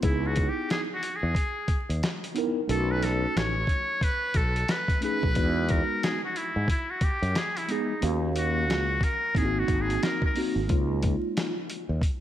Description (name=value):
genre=hip hop, jazz-hop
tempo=90 BPM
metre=4/4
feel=swing 60% on 16ths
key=C# dorian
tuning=A4 = 440 Hz
part: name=trumpet with metal mute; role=melody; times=0.0-10.4 s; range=D#4 to C#5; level=-29 LUFS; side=equal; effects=slapback echo
part: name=mellow tine electric piano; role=accompaniment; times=0.0-11.5 s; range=G#3 to E#5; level=-30 LUFS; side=right 1 dB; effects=medium stereo tremolo, slapback echo
part: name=fretless electric bass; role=bass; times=0.0-12.0 s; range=G#1 to G#2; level=-28 LUFS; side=equal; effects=none
part: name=dusty soul sampler-style drum kit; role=drums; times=0.0-12.2 s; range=hi-hat, kick drum, snare drum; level=-28 LUFS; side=equal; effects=none
room=moderate lush hall reverb, RT60 2.2 s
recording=big arena sound, vinyl crackle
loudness=-24 LUFS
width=side -12 dB against mid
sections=0.0-12.2 A section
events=muted trumpet solo 0.0-12.2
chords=0.0 C#m9; 2.7 B7; 5.4 Emaj9; 8.0 D#m7; 9.4 G#7; 10.7 C#6